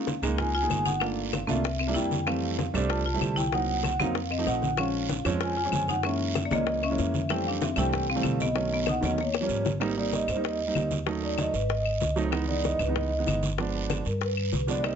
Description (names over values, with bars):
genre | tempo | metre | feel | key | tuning
Afro-Cuban jazz | 191 BPM | 4/4 | straight | unclear | A4 = 441 Hz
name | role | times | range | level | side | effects
vibraphone with soft mallets | melody | 0.0-15.0 s | Bb4 to A5 | -30 LUFS | right 1 dB | none
marimba with hard mallets | second line | 0.0-9.6 s | Bb3 to F4 | -32 LUFS | left 7 dB | none
warm grand piano | accompaniment | 0.0-15.0 s | Eb3 to C5 | -31 LUFS | right 6 dB | none
bongos | percussion | 0.1-15.0 s | none | -35 LUFS | left 11 dB | none
congas | percussion | 0.1-15.0 s | none | -34 LUFS | left 2 dB | none
guiro | percussion | 0.1-15.0 s | none | -39 LUFS | right 8 dB | none
upright bass | bass | 0.2-15.0 s | G1 to G2 | -32 LUFS | equal | none
claves | percussion | 0.2-15.0 s | none | -37 LUFS | left 9 dB | none
room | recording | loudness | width
light reverb | nothing above 7.9 kHz | -25 LUFS | side -7 dB against mid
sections
0.0-9.8 A section; 9.8-15.0 B section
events
drum fill 9.2-9.8; vibraphone solo 9.8-15.0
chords
0.0 Db6; 1.0 Gm7; 1.6 C7; 2.3 Fmaj7; 3.5 Cm7b5; 4.2 F7; 4.8 Bbm7; 6.0 Gb9; 7.3 Fmaj7; 8.6 Cb9; 9.2 Eb9; 9.8 Abmaj9; 11.1 Ebm7b5; 11.7 Ab7b9; 12.3 Dbm9; 13.6 G7b9